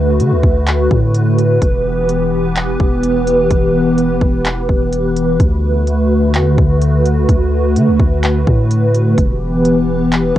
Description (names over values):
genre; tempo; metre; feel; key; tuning
hip hop, atmospheric cloud-rap; 127 BPM; 4/4; half-time; D major; A4 = 440 Hz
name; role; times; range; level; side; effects
hollow soft pad; sustained chords; 0.0-10.4 s; D3 to B4; -14 LUFS; equal; ensemble chorus, sidechain pumping, cassette tape
long sustained 808-style bass; bass; 0.0-10.4 s; E1 to D3; -16 LUFS; equal; none
trap drum kit; drums; 0.2-10.4 s; handclaps, hi-hat, kick drum; -16 LUFS; equal; none
room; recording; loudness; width
light reverb; home recording on cassette; -11 LUFS; side -13 dB against mid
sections
0.0-10.4 A section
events
none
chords
0.0 D6; 1.6 Em; 5.4 D6; 9.2 Em